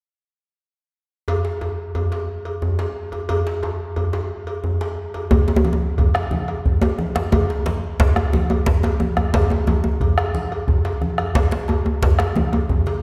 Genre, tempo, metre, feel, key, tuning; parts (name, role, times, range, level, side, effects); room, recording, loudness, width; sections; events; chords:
west african traditional, West African drum ensemble; 119 BPM (dotted quarters); 12/8; straight
cowbell; percussion; 1.3-13.0 s; -30 LUFS; equal
djembe; percussion; 1.3-13.0 s; -26 LUFS; equal
bombo; percussion; 5.3-12.8 s; -24 LUFS; equal
congas; percussion; 5.3-13.0 s; -31 LUFS; equal
djembe; percussion; 5.3-12.7 s; -23 LUFS; equal
wet concert hall reverb, RT60 1.8 s; recorded in a church or concert hall; -21 LUFS; mono
1.3-5.3 A section; 5.3-13.0 B section
drum fill 12.5-13.0